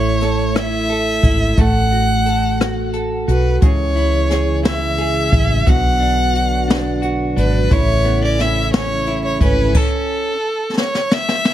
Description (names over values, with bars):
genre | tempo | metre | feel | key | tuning
six-eight pop ballad | 59 BPM (dotted quarters) | 6/8 | straight | A major | A4 = 440 Hz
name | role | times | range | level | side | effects
rich violin | melody | 0.0-11.5 s | A4 to F#5 | -20 LUFS | equal | none
direct-recorded clean electric guitar | accompaniment | 0.0-10.3 s | B2 to A4 | -21 LUFS | right 1 dB | double-tracked left and right
woody fretless electric bass | bass | 0.0-9.7 s | G#1 to C#2 | -19 LUFS | equal | none
jazz brush drum kit | drums | 0.2-11.5 s | crash cymbal, hi-hat, kick drum, rim click, snare drum | -17 LUFS | equal | none
mellow tonewheel organ | sustained chords | 3.6-9.7 s | C#3 to F#4 | -24 LUFS | right 2 dB | chorus vibrato, slow rotary speaker
room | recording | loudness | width
little or no reverb | none | -14 LUFS | side -12 dB against mid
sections
0.0-11.5 A section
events
drum fill 10.8-11.5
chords
0.0 A; 1.6 F#m/A; 3.6 C#m; 5.7 Bm; 7.7 A; 9.8 N.C.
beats
0.56 | 1.58 2.60 | 3.62 4.65 | 5.67 6.69 | 7.71 8.73 | 9.75 10.78